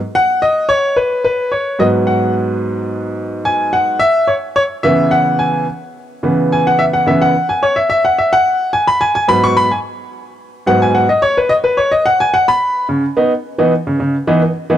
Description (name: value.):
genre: disco.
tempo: 108 BPM.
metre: 4/4.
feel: straight.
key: C# minor.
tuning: A4 = 441 Hz.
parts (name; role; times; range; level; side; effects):
clear baby grand piano; solo; 0.2-14.8 s; G#2 to C#6; -12 LUFS; equal; none.
room: light reverb.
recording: dark, warm production.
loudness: -12 LUFS.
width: side -11 dB against mid.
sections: 0.0-12.9 A section; 12.9-14.8 B section.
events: grand piano solo 0.0-12.9.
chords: 0.0 G#m7; 4.0 C#m7; 8.5 G#m7; 12.9 C#m7.